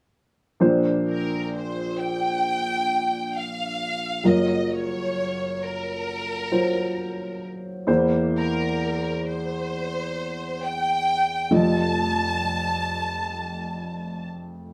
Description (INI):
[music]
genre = pop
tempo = free time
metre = none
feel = none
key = unclear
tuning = A4 = 440 Hz
[part]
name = warm upright piano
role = accompaniment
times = 0.6-14.7 s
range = F1 to Eb5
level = -27 LUFS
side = equal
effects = none
[part]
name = rich studio violin section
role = melody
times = 1.1-14.3 s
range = Bb4 to A5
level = -29 LUFS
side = equal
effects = none
[sound]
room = wet studio reverb, RT60 0.6 s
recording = band playing live in one room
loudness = -25 LUFS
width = mono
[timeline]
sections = 0.6-14.7 A section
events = none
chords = 0.6 Bbadd9; 4.2 Gbmaj7; 7.9 C7/E; 11.5 F7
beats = free time